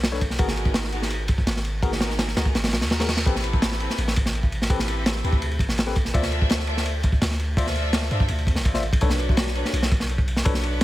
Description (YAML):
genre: drum and bass, jungle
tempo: 167 BPM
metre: 4/4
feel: straight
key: unclear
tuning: A4 = 441 Hz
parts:
  - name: long sustained 808-style bass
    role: bass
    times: 0.0-10.8 s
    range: G#1 to G2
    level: -26 LUFS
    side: equal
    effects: none
  - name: crunchy breakbeat drum kit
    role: drums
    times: 0.0-10.8 s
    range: kick drum, ride cymbal, snare drum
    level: -22 LUFS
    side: equal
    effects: none
  - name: overdriven tine electric piano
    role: stabs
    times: 0.1-10.5 s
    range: B3 to E5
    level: -32 LUFS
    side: left 4 dB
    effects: dub echo
  - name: warm studio string section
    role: sustained chords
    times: 0.4-10.8 s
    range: B3 to E5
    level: -32 LUFS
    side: left 1 dB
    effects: none
  - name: reverse cymbal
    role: sound effects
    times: 2.7-3.3 s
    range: none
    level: -34 LUFS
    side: right 1 dB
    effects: none
room: studio ambience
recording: none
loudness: -20 LUFS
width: side -16 dB against mid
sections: 0.0-10.8 A section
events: reverse cymbal 2.7-3.3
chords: 0.4 G#m9; 3.3 Am9; 6.1 Dm9; 9.0 Bm9